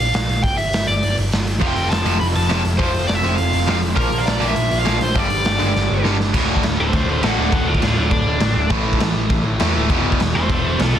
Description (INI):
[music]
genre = punk rock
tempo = 203 BPM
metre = 4/4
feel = straight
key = unclear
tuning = A4 = 440 Hz
[part]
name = biting overdriven guitar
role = melody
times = 0.0-11.0 s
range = D4 to B5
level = -22 LUFS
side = equal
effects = digital delay
[part]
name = hollow-body short-scale picked electric bass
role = bass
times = 0.0-11.0 s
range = D1 to E2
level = -22 LUFS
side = equal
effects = none
[part]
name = raw garage drum kit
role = drums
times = 0.1-10.9 s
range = crash cymbal, hi-hat, kick drum, snare drum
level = -21 LUFS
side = equal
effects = none
[part]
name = distorted electric guitar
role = riff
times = 1.6-10.9 s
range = D2 to Bb3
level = -23 LUFS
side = equal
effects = overdrive
[part]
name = fuzz guitar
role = riff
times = 1.6-11.0 s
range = D2 to Bb4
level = -24 LUFS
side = right 1 dB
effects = distortion
[sound]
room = light reverb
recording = dense, heavily limited modern master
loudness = -16 LUFS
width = side -10 dB against mid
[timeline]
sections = 0.0-6.3 A section; 6.3-11.0 B section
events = drum fill 5.7-6.3; overdriven electric guitar solo 6.3-11.0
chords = 0.4 G5; 1.6 F; 4.0 Bb; 5.2 G; 6.3 D5; 8.7 A5; 9.9 E5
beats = 0.14 | 0.43 0.73 1.02 1.32 | 1.61 1.91 2.20 2.50 | 2.79 3.09 3.38 3.68 | 3.97 4.27 4.57 4.86 | 5.16 5.45 5.75 6.04 | 6.34 6.63 6.93 7.23 | 7.52 7.82 8.12 8.41 | 8.71 9.01 9.30 9.60 | 9.90 10.19 10.49 10.79